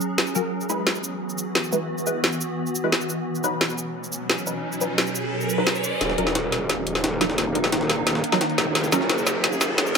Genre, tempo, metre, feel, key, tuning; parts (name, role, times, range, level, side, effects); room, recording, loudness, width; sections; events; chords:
dark technical drum and bass; 175 BPM; 4/4; straight; Eb phrygian; A4 = 437 Hz
swarming drone; sustained chords; 0.0-10.0 s; B2 to Ab4; -28 LUFS; right 1 dB; built-in reverb
filtered dub chord stab; stabs; 0.0-10.0 s; Gb3 to B4; -28 LUFS; equal; phaser, lush chorus, vintage 12-bit sampler grit, dub echo
drum and bass drum kit; drums; 0.0-10.0 s; cabasa, hi-hat, snare drum; -23 LUFS; equal; high-pass filter on perc, high-pass filter on snare, high-pass filter on hats, high-pass filter on room
riser; sound effects; 3.9-10.0 s; -30 LUFS; right 2 dB
growl bass; bass; 6.0-10.0 s; Eb1 to Gb1; -26 LUFS; left 1 dB; chorus, overdrive
jungle sampler-style drum kit; drums; 6.0-10.0 s; hi-hat, snare drum; -29 LUFS; left 1 dB
moderate digital room reverb, RT60 1.1 s; high-pass filter; -21 LUFS; side -5 dB against mid
0.0-6.0 A section; 6.0-10.0 B section
riser 3.9-6.0, 6.0-10.0; build-up 6.0-10.0; drum fill 6.0-10.0; filter sweep on synth stab 6.0-10.0
0.0 Gb5; 0.5 E; 3.3 B; 6.0 Ebm; 8.8 Gb